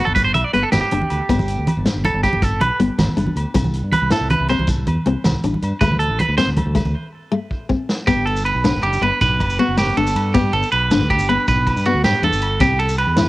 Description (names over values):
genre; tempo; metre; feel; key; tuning
highlife guitar band; 106 BPM (dotted quarters); 12/8; straight; G major; A4 = 440 Hz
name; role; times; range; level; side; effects
nylon-string guitar; accompaniment; 0.0-13.3 s; A3 to E4; -22 LUFS; left 4 dB; cassette tape
clean electric guitar; arpeggios; 0.0-13.3 s; F#4 to E5; -19 LUFS; right 2 dB; phaser, cassette tape, analog delay
fingered electric bass; bass; 0.0-13.3 s; F#1 to G2; -22 LUFS; equal; none
congas; percussion; 0.1-6.9 s; none; -22 LUFS; right 1 dB; none
vintage drum kit; drums; 0.2-13.3 s; hi-hat, kick drum, ride cymbal, snare drum; -23 LUFS; equal; cassette tape
shekere; percussion; 0.2-13.3 s; none; -29 LUFS; equal; none
agogo bells; percussion; 0.4-13.2 s; none; -32 LUFS; left 2 dB; none
room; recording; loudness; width
little or no reverb; home recording on cassette; -15 LUFS; side -18 dB against mid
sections
0.0-8.1 A section; 8.1-13.3 B section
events
clean electric guitar solo 0.0-8.1; break 6.9-8.1; drum fill 7.5-8.1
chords
0.0 G; 3.6 Cadd9; 5.8 D5; 8.1 Gmaj7; 12.6 C